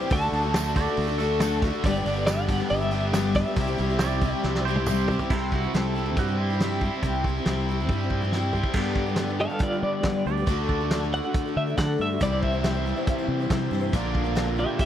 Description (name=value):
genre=folk rock and heartland rock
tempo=139 BPM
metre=4/4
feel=straight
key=unclear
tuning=A4 = 440 Hz
part: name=twelve-string electric guitar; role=melody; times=0.0-4.8, 9.4-14.9 s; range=F4 to A5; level=-29 LUFS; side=equal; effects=tremolo, slapback echo
part: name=picked twelve-string acoustic guitar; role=accompaniment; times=0.0-14.9 s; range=G2 to C5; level=-30 LUFS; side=left 6 dB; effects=none
part: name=crunchy overdriven guitar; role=riff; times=0.0-14.9 s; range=G2 to G4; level=-29 LUFS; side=right 1 dB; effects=none
part: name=fingered electric bass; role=bass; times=0.1-14.6 s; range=G1 to G3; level=-28 LUFS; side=equal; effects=none
part: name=loose indie drum kit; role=drums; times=0.1-14.9 s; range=crash cymbal, hi-hat, kick drum, snare drum, toms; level=-27 LUFS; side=right 1 dB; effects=none
part: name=tambourine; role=percussion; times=0.6-5.0 s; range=none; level=-41 LUFS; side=right 17 dB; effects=none
part: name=pedal steel guitar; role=second line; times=0.8-7.2, 10.3-11.0 s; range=E4 to D5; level=-33 LUFS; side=right 11 dB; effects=none
room=small room ambience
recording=dry, close 1970s-style studio recording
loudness=-22 LUFS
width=side -10 dB against mid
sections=0.0-5.3 A section; 5.3-8.8 B section; 8.8-14.9 C section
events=drum fill 4.4-5.3, 7.9-8.8; clean electric guitar solo 8.8-14.9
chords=0.1 D; 1.9 G; 3.6 C; 8.8 G; 10.5 D; 12.2 C; 13.9 Bb